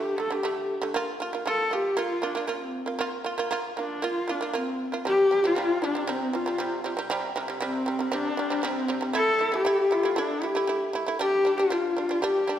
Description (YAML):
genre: mongolian traditional, Mongolian folk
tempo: 117 BPM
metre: 4/4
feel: straight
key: C zhi mode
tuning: A4 = 440 Hz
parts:
  - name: warm horsehead fiddle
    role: melody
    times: 0.0-12.6 s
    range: C4 to A4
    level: -26 LUFS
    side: left 1 dB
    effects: none
  - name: shamisen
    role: arpeggios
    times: 0.0-12.6 s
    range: C3 to F4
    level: -29 LUFS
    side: right 3 dB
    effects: none
  - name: low xiao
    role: second line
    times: 5.1-12.6 s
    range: C4 to A4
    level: -30 LUFS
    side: left 5 dB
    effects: none
room: wet scoring stage reverb, RT60 2.0 s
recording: none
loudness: -24 LUFS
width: side -10 dB against mid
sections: 0.0-5.1 A section; 5.1-12.6 B section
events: none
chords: 0.0 D5; 0.9 Bb5; 5.1 C5; 9.2 A5; 11.2 G5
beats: 0.44 | 0.95 1.46 1.98 2.49 | 3.00 3.52 4.03 4.54 | 5.05 5.57 6.08 6.59 | 7.11 7.62 8.13 8.64 | 9.15 9.67 10.18 10.69 | 11.20 11.72 12.23